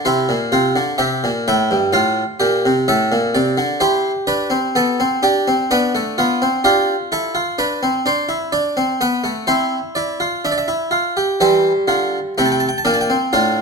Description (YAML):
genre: classical, baroque-style 4-part fugue for harpsichord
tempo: 63 BPM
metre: 4/4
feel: straight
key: unclear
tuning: A4 = 440 Hz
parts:
  - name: harpsichord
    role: solo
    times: 0.0-13.6 s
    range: G2 to A5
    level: -15 LUFS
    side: equal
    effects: none
room: moderate recital hall reverb, RT60 1.4 s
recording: close, detailed microphones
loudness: -15 LUFS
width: side -4 dB against mid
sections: 0.0-11.4 A section; 11.4-13.6 B section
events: none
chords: 0.1 C7; 1.9 F/A; 3.8 C; 5.7 Bdim; 7.6 D7sus2; 9.5 C; 11.4 C7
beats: | 0.06 1.01 1.95 2.88 | 3.82 4.76 5.71 6.65 | 7.60 8.55 9.50 10.46 | 11.42 12.37 13.32